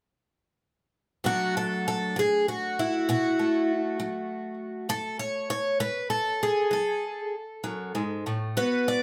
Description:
folk, solo fingerstyle acoustic guitar; 65 BPM (dotted quarters); 6/8; rubato; B dorian; A4 = 440 Hz
picked twelve-string acoustic guitar; solo; 1.2-9.0 s; F#2 to D5; -28 LUFS; equal
wet studio ambience, RT60 0.5 s; heard from further back in the room; -28 LUFS; mono
1.2-9.0 A section
1.2 Bm7; 4.9 F#m

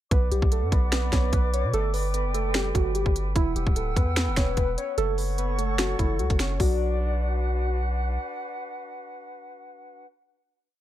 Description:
hip hop, trap; 148 BPM; 4/4; half-time; B minor; A4 = 440 Hz
muted felt-like synth keys; melody; 0.1-7.8 s; E4 to C#5; -31 LUFS; right 2 dB; chorus, low-pass filter, tape echo
mellow small flute group; sustained chords; 0.1-10.0 s; D4 to E6; -34 LUFS; left 1 dB
long sustained 808-style bass; bass; 0.1-8.2 s; D1 to B2; -26 LUFS; equal
trap drum kit; drums; 0.1-6.7 s; finger snaps, hi-hat, kick drum, snare drum; -25 LUFS; equal
soft octave-layered synth lead; second line; 0.9-7.8 s; A4 to D5; -33 LUFS; left 2 dB; chorus, phaser, tape echo
digital ambience; -23 LUFS; side -13 dB against mid
0.1-6.6 hook; 6.6-9.8 final chord
0.1 Bm; 1.7 G; 3.4 Emadd9; 5.0 F#m; 6.6 Bm

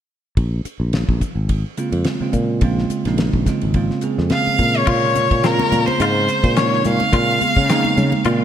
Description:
electric jazz fusion; 106 BPM; 4/4; swing 54% on 16ths; Bb minor; A4 = 440 Hz
sustaining fretless electric bass; bass; 0.4-8.4 s; Ab1 to Db3; -20 LUFS; equal
damped 70s drum kit; drums; 0.4-8.4 s; crash cymbal, hi-hat, kick drum, ride cymbal, snare drum; -22 LUFS; left 1 dB; gated reverb
bell-like tine electric piano; accompaniment; 1.8-8.4 s; C3 to Ab4; -20 LUFS; right 4 dB; lush chorus
clear violin; melody; 4.3-8.4 s; Bb4 to F5; -18 LUFS; left 1 dB
semi-hollow electric guitar; stabs; 4.9-8.4 s; C4 to F4; -27 LUFS; left 6 dB; lush chorus, ping-pong delay
congas; percussion; 5.2-8.2 s; -26 LUFS; left 4 dB
light reverb, small room reverb; bright 1980s-style digital production; -15 LUFS; side -10 dB against mid
0.4-4.9 A section; 4.9-8.4 B section
0.4 Bbm9

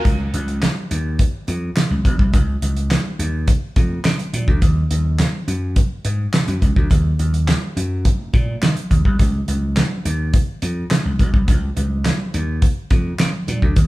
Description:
early-eighties boogie funk; 105 BPM; 4/4; straight; A4 = 440 Hz
congas; percussion; 0.0-13.9 s; -30 LUFS; right 2 dB
vintage slap bass; bass; 0.1-13.9 s; Cb2 to Eb3; -20 LUFS; equal
damped 70s drum kit; drums; 0.1-13.9 s; handclaps, hi-hat, kick drum, snare drum; -17 LUFS; equal
light reverb; band playing live in one room; -16 LUFS; side -18 dB against mid
0.1-13.9 A section

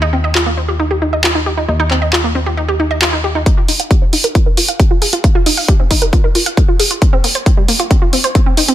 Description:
uplifting trance; 135 BPM; 4/4; straight; A4 = 440 Hz
analog pluck; arpeggios; 0.0-8.7 s; G3 to F5; -17 LUFS; right 1 dB; chorus, sidechain pumping, ping-pong delay
solid FM bass; bass; 0.0-3.4 s; Eb2; -18 LUFS; equal; sidechain pumping
punchy analog drum machine; drums; 0.4-8.7 s; handclaps, hi-hat; -16 LUFS; right 1 dB
electronic kick drum; drums; 3.5-8.4 s; -11 LUFS; equal
light reverb; -11 LUFS; side -12 dB against mid
0.0-3.5 A section; 3.5-8.7 B section
build-up 3.5-8.7; filter sweep on synth arpeggio sound 3.5-8.7
0.0 Eb6; 3.5 Fsus2; 7.0 N.C.

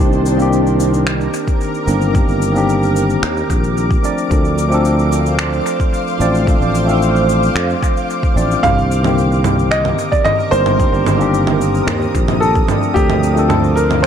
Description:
sunset chillout; 111 BPM; 4/4; straight; C dorian; A4 = 440 Hz
tine electric piano; accompaniment; 0.0-14.1 s; D3 to D5; -18 LUFS; left 1 dB; auto-pan, analog delay
shimmering ambient pad; sustained chords; 0.0-14.1 s; Bb4 to Eb6; -21 LUFS; right 1 dB; chorus, built-in reverb
sustaining fretless electric bass; bass; 0.0-14.1 s; G1 to F2; -17 LUFS; equal
electronic cabasa, finger snaps and congas; drums; 0.1-14.1 s; -22 LUFS; right 2 dB; analog delay
electronic kick drum; drums; 1.5-13.1 s; -16 LUFS; equal
dark baby grand piano; melody; 8.6-14.1 s; G4 to F5; -18 LUFS; equal; analog delay
light reverb, digital ambience; echo-heavy mix; -12 LUFS; side -8 dB against mid
0.0-14.1 A section
0.0 Cm9; 4.0 Dm7; 8.6 Cm9; 12.7 Dm7

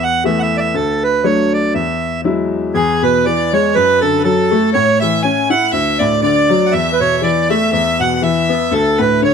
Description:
celtic folk; 120 BPM; 2/4; swing 55% on 8ths; E mixolydian; A4 = 441 Hz
accordion; melody; 0.0-9.3 s; G#4 to G#5; -15 LUFS; right 6 dB; plate reverb
bright upright piano; accompaniment; 0.0-9.3 s; D2 to E4; -16 LUFS; left 4 dB
clear fiddle; second line; 2.8-9.3 s; G#4 to G#5; -20 LUFS; left 8 dB
moderate studio reverb, RT60 0.6 s; dark, warm production; -12 LUFS; side -6 dB against mid
0.0-2.7 A section; 2.7-9.3 A section
0.0 Esus4; 0.7 D; 1.7 Eadd9; 2.7 E; 3.7 D/F#; 4.7 A; 5.7 D; 6.7 Esus4; 7.7 Esus2; 8.7 D5

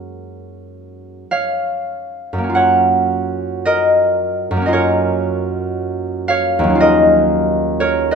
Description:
classical, solo harp piece; 43-60 BPM; 4/4; rubato; F# major; A4 = 440 Hz
concert harp; solo; 0.0-8.2 s; D#2 to F#5; -14 LUFS; equal
moderate recital hall reverb, RT60 1.6 s; minimal, uncompressed stereo recording; -14 LUFS; side -6 dB against mid
0.0-2.5 A section; 2.5-8.2 A section
0.0 F#maj7

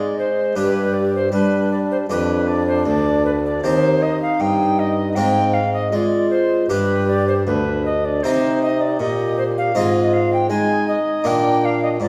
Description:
classical, baroque-style sonata movement with continuo; 79 BPM; 4/4; straight; C minor; A4 = 440 Hz
mellow alto recorder; melody; 0.0-12.1 s; B4 to Ab5; -23 LUFS; equal
mellow baroque flute; second line; 0.0-12.1 s; D4 to G4; -24 LUFS; equal
harpsichord; accompaniment; 0.0-12.1 s; D2 to Ab4; -26 LUFS; equal
mellow bassoon; bass; 0.0-12.1 s; D2 to Ab3; -25 LUFS; equal
wet recital hall reverb, RT60 1.5 s; heard from further back in the room; -18 LUFS; mono
0.0-12.1 A section
0.0 Ab; 0.6 G5; 2.1 G5/F; 3.6 Cm/Eb; 5.2 Fm/Ab; 6.7 G5; 8.2 Cm; 9.8 Fm/Ab; 11.3 Bb

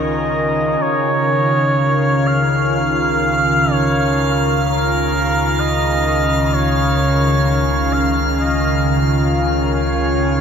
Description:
ambient; 64 BPM; 3/4; straight; A4 = 440 Hz
clear flugelhorn; melody; 0.0-10.4 s; Bb4 to F5; -19 LUFS; equal; tape echo
evolving wavetable pad; sustained chords; 0.0-10.4 s; Db3 to Bb4; -17 LUFS; equal; chorus, built-in reverb
vibraphone with medium hard mallets; arpeggios; 0.0-1.3 s; Bb5 to C6; -42 LUFS; left 1 dB
warm sub bass; bass; 0.0-10.4 s; Db2; -24 LUFS; equal
drifting glass-harmonics texture; texture; 1.4-10.4 s; F5 to F6; -24 LUFS; left 1 dB; chorus, built-in reverb
wet huge ambient reverb, RT60 8.5 s; -14 LUFS; side -7 dB against mid
0.8-10.4 A section
fade-in on sub bass 0.8-10.4
0.0 Dbmaj9; 0.8 Dbadd9

